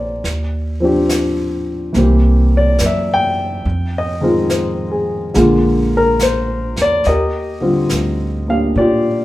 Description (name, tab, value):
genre	jazz ballad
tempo	70 BPM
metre	4/4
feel	swing 68% on 8ths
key	Eb major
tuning	A4 = 436 Hz
part	dark grand piano	accompaniment	0.0-9.2 s	D3 to G5	-15 LUFS	left 1 dB	none
part	upright bass	bass	0.0-9.2 s	Bb1 to Bb2	-19 LUFS	equal	none
part	jazz brush drum kit	drums	0.2-9.2 s	brushed snare drum, hi-hat, snare drum	-26 LUFS	right 1 dB	none
room	moderate large studio reverb, RT60 0.9 s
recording	band playing live in one room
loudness	-13 LUFS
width	side -16 dB against mid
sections	0.0-7.1 A section; 7.1-9.2 B section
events	none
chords	0.2 Ebmaj13; 1.9 C7; 3.6 Fm7; 5.3 Bb7; 7.1 Ebmaj13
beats	| 0.25 1.10 1.95 2.80 | 3.65 4.50 5.35 6.20 | 7.05 7.91 8.76